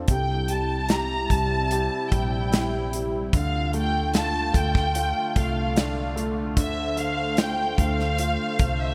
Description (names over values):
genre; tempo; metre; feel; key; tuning
pop ballad; 74 BPM; 4/4; straight; unclear; A4 = 440 Hz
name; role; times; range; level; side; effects
warm concert grand piano; accompaniment; 0.0-8.9 s; C3 to G4; -32 LUFS; equal; none
sweeping resonant pad; sustained chords; 0.0-8.9 s; C3 to C5; -35 LUFS; equal; chorus
woody fretless electric bass; bass; 0.0-8.9 s; Bb1 to D2; -31 LUFS; equal; lush chorus
warm studio violin section; melody; 0.1-8.9 s; E5 to Bb5; -30 LUFS; equal; none
natural country drum kit; drums; 0.1-8.8 s; hi-hat, kick drum, snare drum; -26 LUFS; equal; none
room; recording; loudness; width
light reverb; bright 1980s-style digital production; -24 LUFS; mono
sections
0.0-8.9 A section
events
none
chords
0.1 C; 3.3 F69